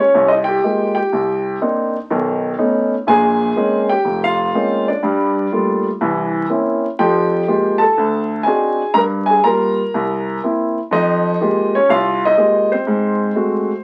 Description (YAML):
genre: solo jazz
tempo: 122 BPM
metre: 4/4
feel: swing 67% on 8ths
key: F minor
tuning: A4 = 439 Hz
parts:
  - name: warm grand piano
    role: solo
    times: 0.0-13.8 s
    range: F1 to Bb5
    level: -17 LUFS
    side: equal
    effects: none
room: moderate small room reverb, RT60 0.5 s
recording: very old 78 rpm record, vinyl crackle, nothing above 10.7 kHz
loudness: -17 LUFS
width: mono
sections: 0.0-13.8 A section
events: none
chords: 0.0 Fm11; 1.1 Cm9; 2.1 B9; 3.1 Bbm11; 5.0 Gm9; 6.0 C7b9; 7.0 Fm11; 8.0 D7b9; 9.0 Gm7; 9.9 C7; 10.9 Fm11; 12.9 Ab7b9